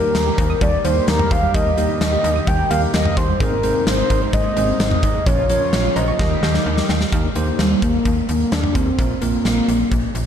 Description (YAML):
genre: synth-pop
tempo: 129 BPM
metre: 4/4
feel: straight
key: Eb major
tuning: A4 = 440 Hz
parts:
  - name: mellow horn-like synth lead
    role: melody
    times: 0.0-10.1 s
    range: G3 to G5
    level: -20 LUFS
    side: equal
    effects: chorus, ping-pong delay
  - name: bell-like tine electric piano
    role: accompaniment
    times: 0.0-9.8 s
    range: Bb3 to Eb5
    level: -26 LUFS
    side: left 1 dB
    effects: medium stereo tremolo
  - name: chorused pulse-width pad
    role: sustained chords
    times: 0.0-7.1 s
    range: C3 to G4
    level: -27 LUFS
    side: right 1 dB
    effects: none
  - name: soft round pluck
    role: arpeggios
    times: 0.0-7.1 s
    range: F3 to Eb6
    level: -30 LUFS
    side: right 4 dB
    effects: chorus, ping-pong delay
  - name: slap-like FM bass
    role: bass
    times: 0.1-10.3 s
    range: Ab1 to Eb2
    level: -22 LUFS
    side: equal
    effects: none
  - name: huge arena drum kit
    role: drums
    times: 0.1-10.3 s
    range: cowbell, hi-hat, kick drum, snare drum, toms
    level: -20 LUFS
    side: equal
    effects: none
room: light reverb, small room reverb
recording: dark, warm production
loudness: -15 LUFS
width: side -8 dB against mid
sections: 0.0-7.1 A section; 7.1-10.3 B section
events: drum fill 6.2-7.1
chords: 0.0 Eb; 3.4 Abadd9; 5.3 Bbm; 6.2 Eb; 7.1 Eb6; 9.0 Bbsus2